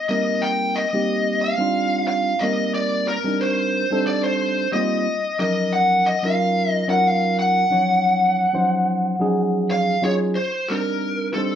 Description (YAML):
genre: jazz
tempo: 90 BPM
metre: 4/4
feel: straight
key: unclear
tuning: A4 = 440 Hz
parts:
  - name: lead guitar through a small cranked amp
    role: melody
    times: 0.0-11.6 s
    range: A4 to G5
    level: -20 LUFS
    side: equal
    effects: overdrive
  - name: mellow tine electric piano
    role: accompaniment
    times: 0.1-11.6 s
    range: F3 to Db5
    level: -22 LUFS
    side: equal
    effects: none
room: moderate large studio reverb, RT60 0.8 s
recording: band playing live in one room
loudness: -18 LUFS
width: side -9 dB against mid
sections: 0.0-10.4 A section; 10.4-11.6 B section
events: none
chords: 0.0 Cm9; 5.1 Ebm9; 10.4 Cm9